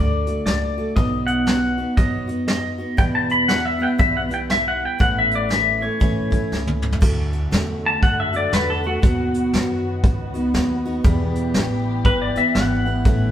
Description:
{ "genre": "honky-tonk and classic country", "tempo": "119 BPM", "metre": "4/4", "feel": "swing 61% on 8ths", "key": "D major", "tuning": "A4 = 441 Hz", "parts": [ { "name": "pedal steel guitar", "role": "melody", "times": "0.0-13.3 s", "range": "F#4 to B5", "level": "-22 LUFS", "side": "left 2 dB", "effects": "none" }, { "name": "picked steel-string acoustic guitar", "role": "accompaniment", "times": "0.0-13.3 s", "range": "E2 to F#4", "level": "-24 LUFS", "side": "right 1 dB", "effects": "none" }, { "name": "upright bass", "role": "bass", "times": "0.0-13.3 s", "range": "G1 to F#2", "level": "-26 LUFS", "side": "equal", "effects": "none" }, { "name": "vintage brush drum kit", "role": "drums", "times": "0.3-13.2 s", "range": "crash cymbal, hi-hat, kick drum, snare drum, toms", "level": "-20 LUFS", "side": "equal", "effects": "none" }, { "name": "dark chamber string section", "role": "sustained chords", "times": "7.0-13.3 s", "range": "C#3 to G4", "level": "-32 LUFS", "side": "left 3 dB", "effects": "none" } ], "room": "moderate stone room reverb, RT60 1.2 s", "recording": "band playing live in one room", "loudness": "-17 LUFS", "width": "side -10 dB against mid", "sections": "0.0-7.0 A section; 7.0-13.3 B section", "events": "drum fill 6.5-7.0; pedal steel guitar solo 7.0-13.3", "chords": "0.0 D; 1.0 B; 3.0 Em; 5.0 A; 7.0 D; 9.0 B; 11.0 Em" }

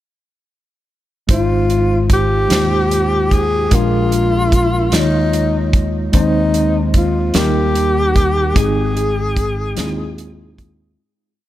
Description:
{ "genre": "slow gospel", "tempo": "50 BPM (dotted quarters)", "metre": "6/8", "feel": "straight", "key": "Ab major", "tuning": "A4 = 439 Hz", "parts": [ { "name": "breathy tenor saxophone", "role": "melody", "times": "1.3-10.6 s", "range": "Eb4 to Ab4", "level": "-18 LUFS", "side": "left 2 dB", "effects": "analog delay" }, { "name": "mellow tine electric piano", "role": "accompaniment", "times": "1.3-11.0 s", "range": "Ab2 to Db5", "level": "-20 LUFS", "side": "equal", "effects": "medium stereo tremolo, analog delay" }, { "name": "fingered electric bass", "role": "bass", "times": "1.3-11.0 s", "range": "Ab1 to Eb2", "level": "-19 LUFS", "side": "equal", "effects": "none" }, { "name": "natural country drum kit", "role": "drums", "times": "1.3-10.8 s", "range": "hi-hat, kick drum, snare drum", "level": "-17 LUFS", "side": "equal", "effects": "none" } ], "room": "light reverb", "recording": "echo-heavy mix", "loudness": "-13 LUFS", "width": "side -14 dB against mid", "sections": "1.3-11.0 A section", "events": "fade-out 8.6-11.0", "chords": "1.3 Ab6; 3.7 Bb7; 4.9 Eb9sus4; 6.1 Ab/Eb; 7.4 Eb; 8.6 Ab" }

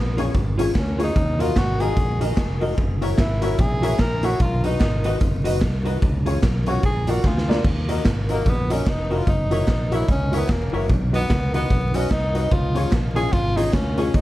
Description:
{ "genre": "ska", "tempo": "148 BPM", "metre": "4/4", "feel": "swing 59% on 8ths", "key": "Eb minor", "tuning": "A4 = 438 Hz", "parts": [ { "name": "breathy tenor saxophone", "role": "melody", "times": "0.0-14.2 s", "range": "Bb3 to Bb4", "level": "-27 LUFS", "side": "equal", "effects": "tape echo" }, { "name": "fingered electric bass", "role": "bass", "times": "0.0-14.2 s", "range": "Fb1 to Eb2", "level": "-24 LUFS", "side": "equal", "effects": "none" }, { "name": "mellow electric guitar", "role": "accompaniment", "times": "0.2-14.1 s", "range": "F4 to Fb5", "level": "-28 LUFS", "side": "right 1 dB", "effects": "lush chorus" }, { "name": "clear upright piano", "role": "stabs", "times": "0.2-14.1 s", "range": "Db4 to Eb5", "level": "-29 LUFS", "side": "left 4 dB", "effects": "none" }, { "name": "raw garage drum kit", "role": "drums", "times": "0.2-14.2 s", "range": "crash cymbal, hi-hat, kick drum, snare drum", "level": "-22 LUFS", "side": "equal", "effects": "none" }, { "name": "group handclap", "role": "percussion", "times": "0.7-13.8 s", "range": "none", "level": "barely audible", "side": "none", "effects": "none" } ], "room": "light reverb", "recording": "vinyl crackle", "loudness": "-18 LUFS", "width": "side -16 dB against mid", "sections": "0.0-7.6 A section; 7.6-14.2 A section", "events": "tenor saxophone solo 0.0-7.6, 7.6-14.2; drum fill 7.2-7.6", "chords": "0.0 Db; 1.2 Ebm; 2.8 Gb7; 4.4 B; 6.0 Db; 6.8 Bb; 7.6 Ebm; 9.3 Gb7; 10.9 B; 12.5 Db" }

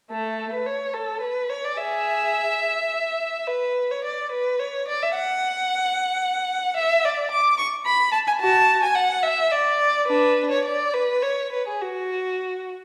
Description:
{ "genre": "classical, baroque-style suite movement for unaccompanied violin", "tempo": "72 BPM (dotted quarters)", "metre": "6/8", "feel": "rubato", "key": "F# minor from 6.8 s", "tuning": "A4 = 442 Hz", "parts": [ { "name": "warm violin", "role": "solo", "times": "0.1-12.7 s", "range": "A3 to D6", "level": "-23 LUFS", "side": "equal", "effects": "none" } ], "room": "wet recital hall reverb, RT60 1.5 s", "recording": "heard from further back in the room", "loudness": "-23 LUFS", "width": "mono", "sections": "0.1-12.8 A section", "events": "none", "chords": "none" }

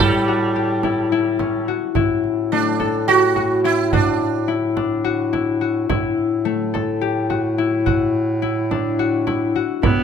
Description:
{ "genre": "contemporary instrumental, chamber music in an uneven meter", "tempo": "213 BPM (eighths)", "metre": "7/8", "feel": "straight", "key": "A mixolydian", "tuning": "A4 = 440 Hz", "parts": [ { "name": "sitar", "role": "melody", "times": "0.0-4.5 s", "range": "D4 to A4", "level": "-20 LUFS", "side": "right 7 dB", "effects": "none" }, { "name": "rich viola", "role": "second line", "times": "0.0-1.7, 9.8-10.0 s", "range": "G3 to B3", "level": "-24 LUFS", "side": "right 4 dB", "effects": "none" }, { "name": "concert harp", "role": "arpeggios", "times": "0.0-10.0 s", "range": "A3 to A4", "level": "-21 LUFS", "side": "left 11 dB", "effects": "none" }, { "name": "warm bass clarinet", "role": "bass", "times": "0.0-10.0 s", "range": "A2", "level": "-22 LUFS", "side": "equal", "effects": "none" }, { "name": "frame drum", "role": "percussion", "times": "0.6-10.0 s", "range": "none", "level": "-23 LUFS", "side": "right 5 dB", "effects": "none" } ], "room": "light reverb", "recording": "close, detailed microphones", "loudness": "-17 LUFS", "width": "side -7 dB against mid", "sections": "0.0-2.0 A section; 2.0-10.0 B section", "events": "none", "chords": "0.0 A7; 2.0 Asus4" }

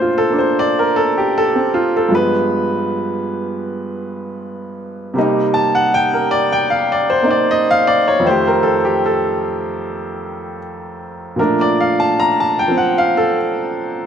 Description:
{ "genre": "solo jazz", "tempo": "78 BPM", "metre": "4/4", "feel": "swing 68% on 8ths, rubato", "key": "unclear", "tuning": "A4 = 440 Hz", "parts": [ { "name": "clear baby grand piano", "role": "solo", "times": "0.0-14.1 s", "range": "F2 to Bb5", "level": "-14 LUFS", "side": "equal", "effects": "none" } ], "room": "moderate large studio reverb, RT60 1.3 s", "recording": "none", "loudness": "-14 LUFS", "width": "side -8 dB against mid", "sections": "0.0-14.1 A section", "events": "grand piano solo 0.0-14.1", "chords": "0.0 Bbmaj9; 2.1 G7b9; 5.2 Cm7; 8.3 F9; 11.4 Bbmaj7" }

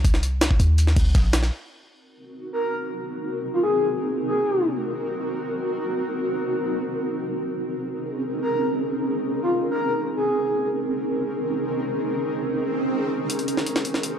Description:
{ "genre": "drum and bass, jungle", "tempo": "163 BPM", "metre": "4/4", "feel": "straight", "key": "unclear", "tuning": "A4 = 440 Hz", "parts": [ { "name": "warm 808-style bass", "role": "bass", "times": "0.0-1.5 s", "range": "Bb1 to Eb2", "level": "-20 LUFS", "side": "equal", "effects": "tube saturation" }, { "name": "crunchy breakbeat drum kit", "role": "drums", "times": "0.0-1.5 s", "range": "hi-hat, shaker, snare drum", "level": "-35 LUFS", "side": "equal", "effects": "high-pass filter on hats, high-pass filter on snare, high-pass filter on perc, high-pass filter on room" }, { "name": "jungle sampler-style drum kit", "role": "drums", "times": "0.0-1.5, 13.3-14.1 s", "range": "hi-hat, kick drum, snare drum", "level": "-21 LUFS", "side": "equal", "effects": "none" }, { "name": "granular cloud pad", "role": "sustained chords", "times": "2.3-14.2 s", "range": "C4 to Bb4", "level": "-25 LUFS", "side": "equal", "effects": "built-in reverb" }, { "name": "breathy flute-like synth lead", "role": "melody", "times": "2.5-4.6, 8.4-10.7 s", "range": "F4 to Bb4", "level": "-25 LUFS", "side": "equal", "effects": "lush chorus, dub echo" }, { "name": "swell", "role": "sound effects", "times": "12.7-13.3 s", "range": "none", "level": "-29 LUFS", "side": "right 5 dB", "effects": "none" } ], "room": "light reverb", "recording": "dry, gritty hardware recording", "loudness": "-22 LUFS", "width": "side -8 dB against mid", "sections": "0.0-1.5 A section; 1.5-14.2 B section", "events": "filter sweep on ambient pad 1.5-14.2; swell 12.7-13.3", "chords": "0.0 Bbmadd9; 1.5 Cm7b5; 7.4 Bbm11; 13.3 Cm7b5" }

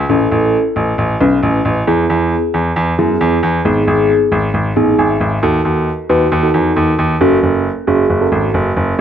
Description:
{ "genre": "synth-pop", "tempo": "135 BPM", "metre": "4/4", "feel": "straight", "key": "unclear", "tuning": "A4 = 445 Hz", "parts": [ { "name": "warm grand piano", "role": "bass", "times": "0.0-9.0 s", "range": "F#1 to F#2", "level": "-15 LUFS", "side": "equal", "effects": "none" }, { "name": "muted felt-like synth keys", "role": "accompaniment", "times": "0.1-9.0 s", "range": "B3 to G#5", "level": "-14 LUFS", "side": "equal", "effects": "chorus, phaser" } ], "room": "moderate lush hall reverb, RT60 2.1 s", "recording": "none", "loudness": "-11 LUFS", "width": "side -9 dB against mid", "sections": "0.0-5.4 A section; 5.4-9.0 B section", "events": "synth keys fill 4.8-5.4", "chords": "0.1 A; 1.9 E; 3.7 G#m; 5.4 D#dim; 7.2 F#m" }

